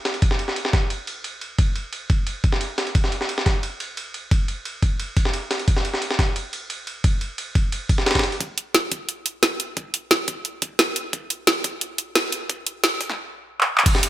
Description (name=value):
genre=drum and bass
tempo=176 BPM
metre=4/4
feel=straight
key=none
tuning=none
part: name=breakbeat sampler-style drum kit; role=drums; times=0.1-8.4, 13.9-14.1 s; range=ride cymbal, snare drum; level=-25 LUFS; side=equal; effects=high-pass filter on cymbals, low-pass filter on cymbals, high-pass filter on snare, low-pass filter on snare, high-pass filter on room, low-pass filter on room
part: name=electronic kick drum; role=drums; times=0.2-13.9 s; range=none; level=-20 LUFS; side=equal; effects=high-pass filter on kick
part: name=drum and bass drum kit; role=drums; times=8.4-14.1 s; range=crash cymbal, handclaps, hi-hat, snare drum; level=-19 LUFS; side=equal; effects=none
room=light reverb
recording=high-pass filter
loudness=-20 LUFS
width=side -13 dB against mid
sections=0.0-8.4 A section; 8.4-13.9 B section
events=build-up 8.4-13.9; drum fill 13.6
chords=none